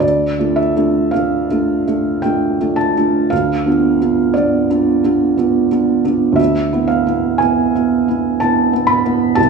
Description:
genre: classical, romantic nocturne for solo piano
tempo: 53-63 BPM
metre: 3/4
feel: rubato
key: unclear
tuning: A4 = 440 Hz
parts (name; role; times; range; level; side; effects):
- felt-muted upright piano; solo; 0.0-9.5 s; C2 to B5; -13 LUFS; right 2 dB; none
room: moderate recital hall reverb, RT60 1.6 s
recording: studio ambience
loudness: -13 LUFS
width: side -5 dB against mid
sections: 0.0-9.5 A section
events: none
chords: 0.0 Dm; 3.3 Bdim/D; 6.4 E7/D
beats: | 0.02 1.14 2.24 | 3.32 4.36 5.37 | 6.39 7.41 8.40 | 9.38

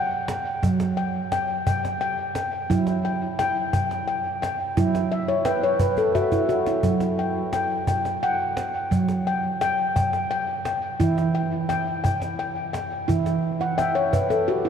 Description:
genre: world meditative, meditative tuned percussion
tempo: 58 BPM (dotted quarters)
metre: 6/8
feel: straight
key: unclear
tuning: A4 = 440 Hz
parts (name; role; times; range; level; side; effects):
- handpan; arpeggios; 0.0-14.7 s; E3 to G5; -22 LUFS; equal; diffuse ambient delay
- cajon; percussion; 0.3-14.5 s; none; -29 LUFS; equal; none
room: wet cathedral reverb, RT60 5.3 s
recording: in a vast, echoing space, cassette tape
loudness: -21 LUFS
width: side -8 dB against mid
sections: 0.0-14.7 A section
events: handpan fill 5.1-6.8, 13.6-14.7; drum fill 6.0-6.8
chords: 0.0 N.C.; 2.7 A13/F# (rootless); 6.8 Emadd9/F# (rootless); 11.0 Emadd9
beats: | 0.64 1.67 | 2.70 3.73 | 4.77 5.81 | 6.84 7.88 | 8.92 9.96 | 11.01 12.05 | 13.09 14.13

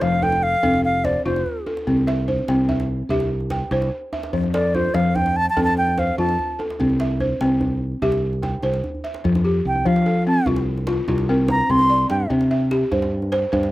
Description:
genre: west african traditional, West African string and xylophone music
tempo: 98 BPM (dotted quarters)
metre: 12/8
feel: straight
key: F major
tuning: A4 = 440 Hz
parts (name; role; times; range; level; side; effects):
- wooden flute; melody; 0.0-12.3 s; C5 to C6; -20 LUFS; equal; none
- balafon; arpeggios; 0.0-13.7 s; F3 to G5; -21 LUFS; left 1 dB; slapback echo
- fingered electric bass; bass; 0.0-13.7 s; F1 to F3; -23 LUFS; equal; none
- djembe; percussion; 0.0-13.7 s; none; -30 LUFS; right 1 dB; slapback echo
room: light reverb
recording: recorded outdoors, with no room sound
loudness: -18 LUFS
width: side -17 dB against mid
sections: 0.0-9.2 A section; 9.2-13.7 B section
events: drum fill 8.9-9.2; flute solo 9.2-13.7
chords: 0.0 F; 1.9 C; 4.3 F; 6.8 C; 9.2 F; 11.7 C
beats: 0.02 0.64 1.25 | 1.87 2.48 3.10 3.72 | 4.33 4.95 5.56 6.18 | 6.79 7.41 8.02 8.64 | 9.25 9.86 10.47 11.08 | 11.70 12.30 12.91 13.53

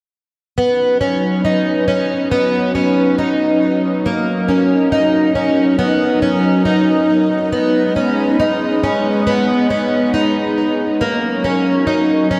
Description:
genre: dream pop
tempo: 69 BPM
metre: 4/4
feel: straight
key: B major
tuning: A4 = 438 Hz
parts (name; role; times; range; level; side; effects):
- phased analog pad; sustained chords; 0.6-12.4 s; F#3 to D#5; -20 LUFS; equal; phaser, chorus
- fingerpicked plugged-in twelve-string acoustic guitar; arpeggios; 0.6-12.4 s; A#3 to D#4; -17 LUFS; equal; lush chorus, delay
room: wet huge ambient reverb, RT60 7.3 s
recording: dreamy mix soaked in reverb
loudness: -16 LUFS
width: mono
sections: 0.6-12.4 A section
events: none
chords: 0.6 Badd9; 4.1 D#m; 7.5 G#m; 11.0 F#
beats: | 0.58 1.45 2.32 3.19 | 4.06 4.93 5.80 6.67 | 7.54 8.40 9.27 10.14 | 11.01 11.88

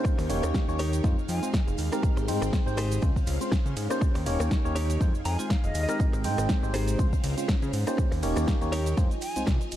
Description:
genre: filtered disco house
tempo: 121 BPM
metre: 4/4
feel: swing 56% on 16ths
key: Ab major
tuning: A4 = 440 Hz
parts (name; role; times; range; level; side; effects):
- tine electric piano; accompaniment; 0.0-9.5 s; Ab3 to G5; -32 LUFS; right 1 dB; phaser, sidechain pumping
- string machine, full ensemble; sustained chords; 0.0-9.8 s; Ab3 to Ab5; -36 LUFS; equal; phaser, ensemble chorus, sidechain pumping
- direct-recorded clean electric guitar; riff; 0.0-9.6 s; Eb4 to Bb5; -36 LUFS; equal; sidechain pumping
- fat analog bass; bass; 0.0-9.8 s; Eb1 to Db3; -29 LUFS; equal; tube saturation, sidechain pumping
- electronic kick drum; drums; 0.0-9.6 s; none; -25 LUFS; equal; overdrive, small room ambience
- maracas; percussion; 0.0-9.8 s; none; -46 LUFS; right 8 dB; none
- punchy analog drum machine; drums; 0.1-9.8 s; cabasa, hi-hat, ride cymbal, rim click, snare drum; -35 LUFS; equal; overdrive, small room ambience, sidechain pumping on hats, sidechain pumping on perc, sidechain pumping on cymbals
- breathy mellow silver concert flute; melody; 1.3-1.5, 5.3-6.1, 9.2-9.4 s; Eb5 to Ab5; -37 LUFS; left 1 dB; sidechain pumping, dub echo
room: light reverb, digital ambience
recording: dark, warm production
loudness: -24 LUFS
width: side -12 dB against mid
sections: 0.0-9.8 A section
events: clean electric guitar fill 5.0-6.0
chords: 0.0 Eb7; 1.0 Fm7; 2.0 Abmaj7; 3.0 Dbmaj7; 4.0 Eb7; 5.0 Fm7; 6.0 Abmaj7; 7.0 Dbmaj7; 8.0 Eb7; 9.0 Fm7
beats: | 0.05 0.55 1.04 1.54 | 2.03 2.53 3.02 3.52 | 4.02 4.51 5.01 5.50 | 6.00 6.50 6.99 7.49 | 7.98 8.48 8.97 9.47

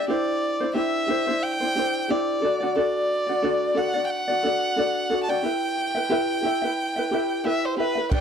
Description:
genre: acoustic pop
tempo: 90 BPM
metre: 4/4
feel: swing 55% on 16ths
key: unclear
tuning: A4 = 440 Hz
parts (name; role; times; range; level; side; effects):
- rich violin; melody; 0.0-8.2 s; B4 to A5; -25 LUFS; right 1 dB; slapback echo
- ukulele; accompaniment; 0.0-8.2 s; D4 to E5; -24 LUFS; equal; none
- compact cocktail drum kit; drums; 8.1-8.2 s; crash cymbal, kick drum; -19 LUFS; right 1 dB; none
room: little or no reverb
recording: dry, close 1970s-style studio recording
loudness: -22 LUFS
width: side -7 dB against mid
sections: 0.0-8.1 A section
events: none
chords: 0.1 Cadd9; 2.4 D; 5.4 Em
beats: | 0.09 0.76 1.43 2.10 | 2.77 3.43 4.10 4.77 | 5.44 6.11 6.78 7.45 | 8.12

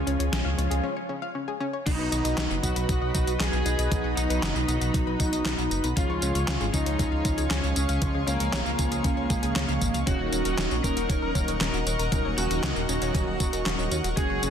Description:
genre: synthwave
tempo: 117 BPM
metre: 4/4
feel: straight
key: Eb minor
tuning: A4 = 440 Hz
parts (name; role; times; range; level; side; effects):
- chorused pulse-width pad; sustained chords; 0.0-14.5 s; F4 to Db6; -35 LUFS; equal; sidechain pumping
- analog pluck; arpeggios; 0.0-14.5 s; Db4 to F#5; -35 LUFS; left 4 dB; chorus, digital delay
- mellow synth brass; stabs; 0.0-14.5 s; F3 to Ab4; -33 LUFS; right 2 dB; chorus, phaser
- dark detuned saw bass; bass; 0.0-14.5 s; Eb1 to Eb2; -29 LUFS; equal; tube saturation
- gated 80s digital drum machine; drums; 0.1-14.5 s; crash cymbal, handclaps, hi-hat, snare drum, tambourine; -31 LUFS; left 1 dB; gated reverb, gated reverb snare, overdrive
- lead guitar through a small cranked amp; melody; 1.9-14.5 s; Bb3 to Bb4; -30 LUFS; equal; overdrive, tape echo
- electronic kick drum; drums; 1.9-14.3 s; none; -28 LUFS; equal; overdrive
room: light reverb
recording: dense, heavily limited modern master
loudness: -24 LUFS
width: side -8 dB against mid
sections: 0.0-1.9 A section; 1.9-14.5 B section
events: break 0.8-1.9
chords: 0.0 Db; 1.9 B; 6.0 Db; 10.1 Ebm7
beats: 0.33 0.84 1.35 | 1.86 2.38 2.89 3.40 | 3.92 4.43 4.94 5.45 | 5.97 6.48 6.99 7.50 | 8.02 8.53 9.04 9.56 | 10.07 10.58 11.10 11.61 | 12.12 12.63 13.15 13.66 | 14.17

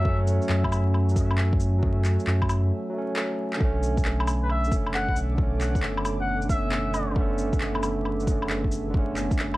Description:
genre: future garage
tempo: 135 BPM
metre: 4/4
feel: swing 66% on 16ths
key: unclear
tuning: A4 = 440 Hz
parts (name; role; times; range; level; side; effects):
- trumpet with cup mute; melody; 0.0-0.2, 4.4-7.1 s; B4 to F#5; -33 LUFS; left 1 dB; tape echo
- barky tine electric piano; accompaniment; 0.0-9.6 s; D3 to C#4; -29 LUFS; right 1 dB; overdrive, sidechain pumping, analog delay
- ethereal airy pad; sustained chords; 0.0-9.6 s; B2 to D6; -37 LUFS; left 1 dB; ensemble chorus, built-in reverb, phaser, sidechain pumping
- warm sub bass; bass; 0.0-9.6 s; F#1 to F#2; -26 LUFS; equal; sidechain pumping
- electronic kick drum; drums; 0.1-9.4 s; none; -26 LUFS; equal; overdrive, small room ambience
- electronic shaker, handclaps and woodblock; drums; 0.3-9.6 s; none; -32 LUFS; left 1 dB; overdrive, small room ambience
room: light reverb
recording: vinyl crackle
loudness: -22 LUFS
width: side -18 dB against mid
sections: 0.0-3.6 A section; 3.6-9.6 A section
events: break 2.7-3.6; drum fill 3.2-3.6; band accent 3.5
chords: 0.0 F#m; 3.6 Bm7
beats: | 0.05 0.50 0.94 1.39 | 1.83 2.27 2.72 3.16 | 3.61 4.05 4.50 4.94 | 5.38 5.83 6.27 6.72 | 7.16 7.61 8.05 8.50 | 8.94 9.38

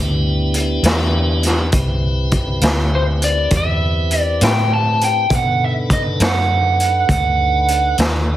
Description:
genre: slow blues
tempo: 67 BPM (dotted quarters)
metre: 12/8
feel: straight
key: unclear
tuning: A4 = 439 Hz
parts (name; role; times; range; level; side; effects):
- tonewheel organ; sustained chords; 0.0-8.4 s; B3 to B4; -24 LUFS; equal; slow rotary speaker
- vintage muted fingered electric bass; bass; 0.0-8.4 s; C2 to B2; -18 LUFS; equal; none
- raw garage drum kit; drums; 0.5-8.1 s; hi-hat, kick drum, snare drum; -19 LUFS; equal; none
- crunchy overdriven guitar; melody; 3.0-8.0 s; C5 to A5; -18 LUFS; right 2 dB; spring reverb
room: light reverb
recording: heavily compressed radio sound, multiband compression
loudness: -14 LUFS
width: side -13 dB against mid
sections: 0.0-8.4 A section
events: none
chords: 0.0 Em7; 1.7 Cmaj7; 5.3 B7#9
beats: 0.84 | 1.74 2.63 3.52 4.41 | 5.30 6.20 7.09 7.98

